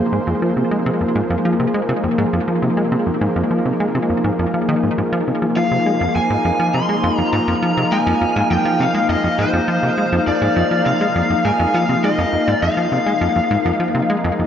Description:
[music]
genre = ambient, sequencer-driven space music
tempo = 102 BPM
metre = 4/4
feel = straight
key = F minor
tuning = A4 = 439 Hz
[part]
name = lush unison pad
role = sustained chords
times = 0.0-14.5 s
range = F3 to F5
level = -19 LUFS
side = left 1 dB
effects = chorus
[part]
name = plucky analog bass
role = riff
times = 0.1-14.4 s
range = F2 to Ab3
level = -20 LUFS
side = equal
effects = vintage 12-bit sampler grit, tape echo
[part]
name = lead guitar through a small cranked amp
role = melody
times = 5.6-14.4 s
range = C5 to C6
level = -20 LUFS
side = left 1 dB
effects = overdrive, tape echo
[sound]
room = wet spring reverb, RT60 3.0 s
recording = echo-heavy mix, nothing above 7.8 kHz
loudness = -15 LUFS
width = side -9 dB against mid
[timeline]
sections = 0.0-14.5 A section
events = none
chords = 0.0 Fm

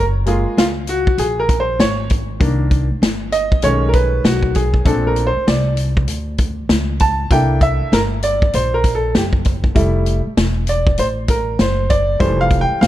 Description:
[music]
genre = hip hop, jazz-hop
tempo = 98 BPM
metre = 4/4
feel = swing 64% on 16ths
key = unclear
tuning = A4 = 440 Hz
[part]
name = clear grand piano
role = accompaniment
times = 0.0-12.9 s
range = Eb3 to A5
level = -18 LUFS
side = right 1 dB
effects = none
[part]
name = upright bass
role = bass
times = 0.0-12.9 s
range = E1 to D2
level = -19 LUFS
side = equal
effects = none
[part]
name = vintage drum kit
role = drums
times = 0.3-12.9 s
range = hi-hat, kick drum, snare drum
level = -17 LUFS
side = equal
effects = none
[sound]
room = little or no reverb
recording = dark, warm production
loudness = -14 LUFS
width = side -13 dB against mid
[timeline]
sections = 0.0-12.9 A section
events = grand piano solo 0.0-12.9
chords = 0.0 Gbmaj7; 2.4 Cm9; 3.6 B13; 4.9 Bbmaj7; 7.3 C13; 9.8 Fmaj9

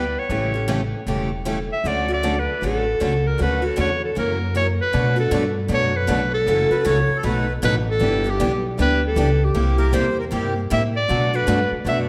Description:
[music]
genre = acoustic string swing (jazz manouche)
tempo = 156 BPM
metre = 4/4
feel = swing 62% on 8ths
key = D major, B minor from 4.9 s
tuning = A4 = 437 Hz
[part]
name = bright clarinet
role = melody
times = 0.0-12.0 s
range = G4 to E5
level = -25 LUFS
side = equal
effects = tape echo
[part]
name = picked steel-string acoustic guitar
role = accompaniment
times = 0.0-12.1 s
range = B2 to G4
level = -28 LUFS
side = equal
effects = none
[part]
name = picked steel-string acoustic guitar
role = accompaniment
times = 0.0-12.1 s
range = B2 to B4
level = -30 LUFS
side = equal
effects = none
[part]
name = upright bass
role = bass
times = 0.0-12.1 s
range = E1 to B2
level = -26 LUFS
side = equal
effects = none
[part]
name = accordion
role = second line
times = 6.7-10.6 s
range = G4 to C#5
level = -29 LUFS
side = equal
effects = none
[sound]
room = wet recital hall reverb, RT60 1.4 s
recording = dark, warm production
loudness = -21 LUFS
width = mono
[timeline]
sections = 0.0-4.9 A section; 4.9-12.1 B section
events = none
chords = 0.3 A7; 1.8 Dmaj7; 4.2 F#7; 4.9 Bm7; 6.5 F#m7; 7.2 B7; 8.0 Em7; 9.5 C7; 11.1 Bm7

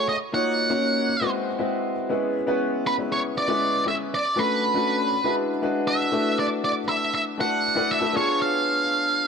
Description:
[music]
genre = pop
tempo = 119 BPM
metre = 4/4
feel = straight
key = unclear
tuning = A4 = 440 Hz
[part]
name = octave-fuzz lead guitar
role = melody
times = 0.0-9.3 s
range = B4 to F#5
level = -24 LUFS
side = right 2 dB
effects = distortion
[part]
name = clear concert grand piano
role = accompaniment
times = 0.0-9.3 s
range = G#3 to C#5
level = -24 LUFS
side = left 2 dB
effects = lush chorus
[sound]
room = light reverb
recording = none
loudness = -21 LUFS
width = side -6 dB against mid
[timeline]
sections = 0.0-6.1 A section; 6.1-9.3 B section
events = none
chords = 0.1 D#m7; 1.1 G#7alt; 2.1 C#m7; 4.1 Bm9; 5.1 E7; 6.1 D69; 8.1 C#7b9

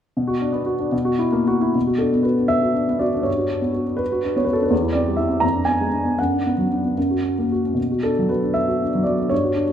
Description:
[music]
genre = classical, romantic character piece for solo piano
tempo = 67-85 BPM (dotted quarters)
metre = 6/8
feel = rubato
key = B minor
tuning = A4 = 440 Hz
[part]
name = warm upright piano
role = solo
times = 0.2-9.7 s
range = E2 to A#5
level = -18 LUFS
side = equal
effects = none
[sound]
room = moderate recital hall reverb, RT60 1.4 s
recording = minimal, uncompressed stereo recording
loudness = -18 LUFS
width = side -9 dB against mid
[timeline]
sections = 0.2-1.8 A section; 1.8-9.7 B section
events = none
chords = 0.2 Bm; 0.9 F#7/B; 1.8 Bm; 3.3 Gmaj7; 4.7 C/E; 5.4 Fdim7; 6.2 Bm/F#; 7.0 F#; 7.8 Bm

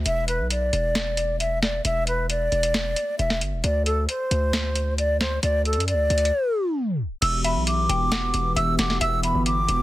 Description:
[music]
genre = hip hop, trap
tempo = 134 BPM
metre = 4/4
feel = half-time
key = E minor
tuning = A4 = 440 Hz
[part]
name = hard-hitting 808-style bass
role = bass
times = 0.0-9.8 s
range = E1 to F#2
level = -25 LUFS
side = equal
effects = none
[part]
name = breathy hollow jazz flute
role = melody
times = 0.1-9.8 s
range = A4 to E6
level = -24 LUFS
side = equal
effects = none
[part]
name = booming analog drum machine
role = drums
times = 0.1-9.8 s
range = crash cymbal, hi-hat, snare drum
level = -26 LUFS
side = equal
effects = none
[part]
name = hollow soft pad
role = sustained chords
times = 7.2-9.8 s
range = E3 to G4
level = -28 LUFS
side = equal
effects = chorus
[part]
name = mallet-like synth pluck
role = second line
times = 7.4-9.4 s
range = E5 to G5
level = -32 LUFS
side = left 3 dB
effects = chorus, digital delay
[sound]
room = digital ambience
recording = dense, heavily limited modern master, tape stop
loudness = -21 LUFS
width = side -16 dB against mid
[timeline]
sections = 0.0-7.2 A section; 7.2-9.8 B section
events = break 6.3-7.2; tape stop 6.3-7.2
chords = 0.1 N.C.; 7.2 Emadd9

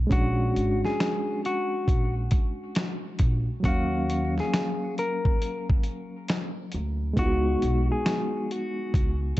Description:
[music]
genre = lo-fi hip hop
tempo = 68 BPM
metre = 4/4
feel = swing 66% on 16ths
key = unclear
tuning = A4 = 440 Hz
[part]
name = bright reed electric piano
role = accompaniment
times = 0.0-9.4 s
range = F#3 to E#5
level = -30 LUFS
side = equal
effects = fast tremolo, cassette tape, low-pass filter
[part]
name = upright bass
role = bass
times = 0.0-9.3 s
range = G#1 to D#2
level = -27 LUFS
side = equal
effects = none
[part]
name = clean electric guitar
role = melody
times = 0.1-9.2 s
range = F#4 to A#4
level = -31 LUFS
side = left 2 dB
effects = low-pass filter, tape echo
[part]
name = dusty soul sampler-style drum kit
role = drums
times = 0.1-9.4 s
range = finger snaps, hi-hat, kick drum, snare drum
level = -26 LUFS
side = equal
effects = none
[sound]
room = light reverb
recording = dark, warm production, nothing above 8.0 kHz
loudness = -24 LUFS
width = side -16 dB against mid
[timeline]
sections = 0.0-9.4 A section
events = none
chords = 0.1 A#7alt; 3.6 D#m7; 7.2 C#7sus4

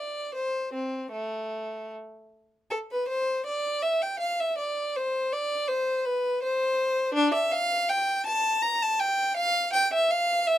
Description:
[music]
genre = classical, baroque-style suite movement for unaccompanied violin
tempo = 81 BPM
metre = 3/4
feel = rubato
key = unclear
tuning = A4 = 440 Hz
[part]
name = clear violin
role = solo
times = 0.0-10.6 s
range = A3 to Bb5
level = -25 LUFS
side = equal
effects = none
[sound]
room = light reverb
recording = none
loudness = -25 LUFS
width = side -12 dB against mid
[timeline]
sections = 0.0-2.7 A section; 2.7-10.6 B section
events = none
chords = none

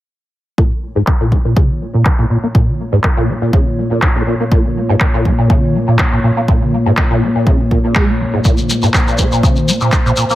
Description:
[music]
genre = acid house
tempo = 122 BPM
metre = 4/4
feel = swing 54% on 16ths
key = Bb minor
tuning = A4 = 439 Hz
[part]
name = dark analog pad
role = sustained chords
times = 1.4-10.3 s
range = Bb2 to Db5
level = -19 LUFS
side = left 1 dB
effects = chorus, vintage 12-bit sampler grit, sidechain pumping
[part]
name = liquid acid bass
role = riff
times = 0.6-10.3 s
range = Bb1 to Bb3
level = -16 LUFS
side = equal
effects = phaser, overdrive, ensemble chorus, sidechain pumping, digital delay
[part]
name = electronic kick drum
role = drums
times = 0.6-10.0 s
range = none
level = -14 LUFS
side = equal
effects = none
[part]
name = electronic handclaps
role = drums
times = 1.1-10.0 s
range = none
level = -20 LUFS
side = equal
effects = low-pass filter on snare
[part]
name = shekere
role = percussion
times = 8.4-10.3 s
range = none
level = -20 LUFS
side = left 2 dB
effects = none
[sound]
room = light reverb, digital ambience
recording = heavily compressed radio sound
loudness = -11 LUFS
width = side -15 dB against mid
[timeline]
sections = 0.6-10.3 A section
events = filter sweep on drum 0.6-10.3; filter sweep on acid bass 0.6-10.3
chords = 0.6 Bbm

